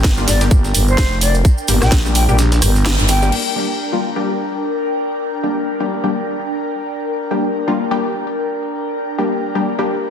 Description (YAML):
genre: bass house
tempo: 128 BPM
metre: 4/4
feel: swing 57% on 16ths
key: G minor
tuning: A4 = 440 Hz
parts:
  - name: growling FM bass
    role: bass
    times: 0.0-3.3 s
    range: G1 to Bb1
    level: -15 LUFS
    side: equal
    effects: overdrive, sidechain pumping
  - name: breakbeat sampler-style drum kit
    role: drums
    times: 0.0-3.3 s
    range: hi-hat, snare drum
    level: -27 LUFS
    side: equal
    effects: none
  - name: electronic kick drum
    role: drums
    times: 0.0-2.0 s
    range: none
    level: -13 LUFS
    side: equal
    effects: none
  - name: garage drum kit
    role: drums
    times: 0.0-3.4 s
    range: crash cymbal, hi-hat, rim click, snare drum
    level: -21 LUFS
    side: equal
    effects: none
  - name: maracas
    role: percussion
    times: 0.0-3.3 s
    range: none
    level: -26 LUFS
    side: right 5 dB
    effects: none
  - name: airy breathy pad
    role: texture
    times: 0.0-10.1 s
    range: D4 to G5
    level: -22 LUFS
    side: equal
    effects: chorus, phaser, sidechain pumping
  - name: orchestra-hit-like synth stab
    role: stabs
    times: 0.2-9.9 s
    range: G3 to G4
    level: -21 LUFS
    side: left 4 dB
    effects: built-in reverb, sidechain pumping, ping-pong delay
  - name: concert flute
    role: melody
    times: 0.3-3.3 s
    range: C5 to G5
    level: -24 LUFS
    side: left 2 dB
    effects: ping-pong delay
room: moderate lush hall reverb, RT60 2.0 s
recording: dense, heavily limited modern master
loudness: -15 LUFS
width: side -8 dB against mid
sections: 0.0-3.3 A section; 3.3-10.1 B section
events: kick drops out 2.4-3.3; band accent 2.9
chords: 0.0 Gm